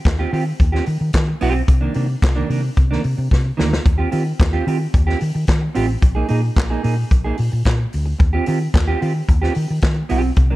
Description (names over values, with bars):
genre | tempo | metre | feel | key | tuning
disco | 110 BPM | 4/4 | straight | unclear | A4 = 440 Hz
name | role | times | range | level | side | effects
mellow electric guitar | accompaniment | 0.1-10.6 s | Eb3 to Ab4 | -23 LUFS | right 4 dB | lush chorus
hollow-body short-scale fingered electric bass | bass | 0.1-10.6 s | A1 to Eb3 | -19 LUFS | equal | none
vintage drum kit | drums | 0.1-10.5 s | handclaps, hi-hat, kick drum, snare drum | -17 LUFS | equal | none
room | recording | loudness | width
small room ambience | dark, warm production | -16 LUFS | side -17 dB against mid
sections
0.0-10.6 A section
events
drum fill 3.3-3.9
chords
0.0 Eb69; 1.7 Cm9; 3.9 Eb69; 6.0 Bb7sus4; 8.2 Eb69